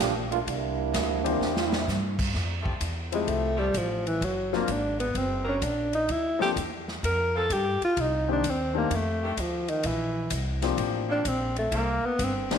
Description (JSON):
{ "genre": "jazz, big band swing", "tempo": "128 BPM", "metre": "4/4", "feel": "swing 67% on 8ths", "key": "F major", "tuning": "A4 = 440 Hz", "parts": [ { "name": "warm trombone section", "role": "second line", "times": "0.0-1.9 s", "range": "F3 to G4", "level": "-28 LUFS", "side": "right 8 dB", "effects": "none" }, { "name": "upright bass", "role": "bass", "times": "0.0-12.6 s", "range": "F#1 to G2", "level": "-32 LUFS", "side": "equal", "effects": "none" }, { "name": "swinging big-band drum kit", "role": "drums", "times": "0.0-12.6 s", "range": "crash cymbal, hi-hat, kick drum, ride cymbal, snare drum", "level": "-33 LUFS", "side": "equal", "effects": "none" }, { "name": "warm baby grand piano", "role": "accompaniment", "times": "1.2-12.6 s", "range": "Eb3 to A4", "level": "-30 LUFS", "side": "left 11 dB", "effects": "none" }, { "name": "clear saxophone section", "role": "sustained chords", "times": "2.6-11.9 s", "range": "D3 to A#4", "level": "-38 LUFS", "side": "left 1 dB", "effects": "none" }, { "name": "breathy tenor saxophone", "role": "melody", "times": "3.1-12.6 s", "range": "Eb3 to Bb4", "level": "-27 LUFS", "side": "equal", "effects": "slapback echo" } ], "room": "moderate echo chamber reverb, RT60 1.4 s, studio reverb", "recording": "1960s-style stereo with parts hard left and right", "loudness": "-25 LUFS", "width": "side -7 dB against mid", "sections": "0.0-2.3 A section; 2.3-12.6 B section", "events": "trombone section solo 0.0-2.3; drum fill 1.4-1.9; tenor saxophone solo 2.3-12.6", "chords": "0.5 C9; 2.3 Fmaj9; 4.2 D7b13; 6.1 Gm11; 8.0 Cm7; 8.9 F6; 9.8 Bb69; 11.7 C9" }